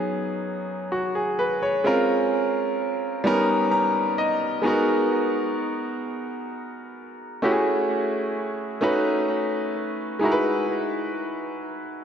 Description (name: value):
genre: R&B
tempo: 43 BPM (dotted quarters)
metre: 6/8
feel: straight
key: B major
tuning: A4 = 440 Hz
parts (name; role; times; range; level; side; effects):
- bright concert grand piano; solo; 0.0-12.0 s; F#3 to A#5; -22 LUFS; equal; analog delay
room: wet lush hall reverb, RT60 3.0 s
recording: dreamy mix soaked in reverb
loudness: -22 LUFS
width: side -8 dB against mid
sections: 0.0-12.0 A section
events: grand piano fill 3.2-4.6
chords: 0.0 B69; 1.8 A#m9; 3.2 D#7b13; 4.6 G#m9; 7.4 F#m9; 8.8 B9; 10.2 Emaj9